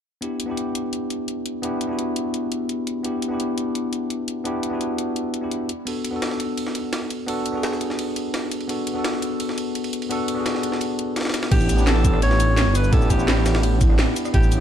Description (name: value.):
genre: liquid drum and bass.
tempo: 170 BPM.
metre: 4/4.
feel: straight.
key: unclear.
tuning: A4 = 440 Hz.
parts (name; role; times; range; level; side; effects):
bell-like tine electric piano; accompaniment; 0.2-14.6 s; B3 to F#5; -24 LUFS; left 1 dB; tape echo.
drum and bass drum kit; drums; 0.2-14.6 s; crash cymbal, hi-hat, rim click, shaker, snare drum; -28 LUFS; equal; none.
breakbeat sampler-style drum kit; drums; 5.9-14.6 s; hi-hat, ride cymbal, snare drum; -30 LUFS; right 1 dB; high-pass filter on cymbals, high-pass filter on snare, high-pass filter on hats.
breathy alto saxophone; melody; 11.5-14.6 s; G4 to C#5; -26 LUFS; equal; vintage 12-bit sampler grit, tape echo.
swelling detuned saw bass; bass; 11.5-14.6 s; G1 to A1; -19 LUFS; equal; none.
electronic kick drum; drums; 11.5-14.4 s; none; -18 LUFS; equal; none.
room: light reverb.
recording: dark, warm production.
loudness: -20 LUFS.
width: side -9 dB against mid.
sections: 0.2-11.5 A section; 11.5-14.6 B section.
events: drop 11.5-14.6.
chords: 0.2 Em9/B; 5.7 Bm7; 11.5 A9sus4.